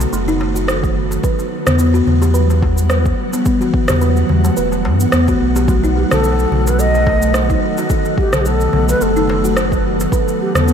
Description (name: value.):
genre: organic downtempo.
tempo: 108 BPM.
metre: 4/4.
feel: swing 56% on 16ths.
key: unclear.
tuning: A4 = 440 Hz.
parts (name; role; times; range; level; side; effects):
ethereal airy pad; sustained chords; 0.0-10.7 s; D#3 to F#5; -21 LUFS; equal; ensemble chorus, built-in reverb, phaser, sidechain pumping.
buzzing kalimba; arpeggios; 0.0-10.7 s; A3 to B4; -20 LUFS; equal; ping-pong delay.
warm sub bass; bass; 0.0-10.7 s; E1 to G2; -16 LUFS; equal; sidechain pumping.
electronic shaker and rim click; drums; 0.0-10.7 s; none; -23 LUFS; right 1 dB; none.
darbuka; percussion; 0.3-10.7 s; none; -27 LUFS; left 2 dB; none.
electronic kick drum; drums; 0.8-10.2 s; none; -18 LUFS; equal; overdrive.
bronze singing bowl; texture; 5.7-10.7 s; F#3 to F#4; -26 LUFS; right 4 dB; none.
breathy reedy low ney; melody; 6.0-10.7 s; G4 to D#5; -18 LUFS; left 1 dB; diffuse ambient delay.
room: moderate huge ambient reverb, RT60 8.0 s.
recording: dreamy mix soaked in reverb.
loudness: -12 LUFS.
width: side -8 dB against mid.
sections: 0.0-10.7 A section.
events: none.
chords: 0.0 B7; 1.2 Emadd9; 5.7 B7; 10.1 Emadd9.